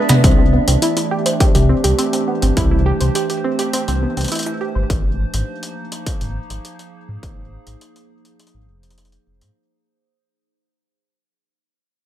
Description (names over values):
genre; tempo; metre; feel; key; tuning
IDM; 103 BPM; 4/4; straight; C major; A4 = 441 Hz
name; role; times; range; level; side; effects
warbly tape-like pad; sustained chords; 0.0-9.6 s; E3 to E5; -23 LUFS; right 1 dB; chorus, built-in reverb, vintage 12-bit sampler grit
warbly dusty pluck; arpeggios; 0.0-4.9 s; B3 to C5; -21 LUFS; right 2 dB; chorus, cassette tape, digital delay
jungle sampler-style drum kit; drums; 0.1-9.5 s; cabasa, hi-hat, rim click, toms; -20 LUFS; equal; overdrive
dark detuned saw bass; bass; 0.2-9.5 s; F1 to Ab2; -18 LUFS; equal; none
electronic kick drum; drums; 0.2-7.3 s; none; -17 LUFS; equal; distortion
room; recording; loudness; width
light reverb, digital ambience; none; -15 LUFS; side -12 dB against mid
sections
0.2-9.6 A section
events
drum fill 0.0; fade-out 0.2-9.6; filter sweep on detuned saw bass 0.2-9.6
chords
0.2 C; 4.9 Ab6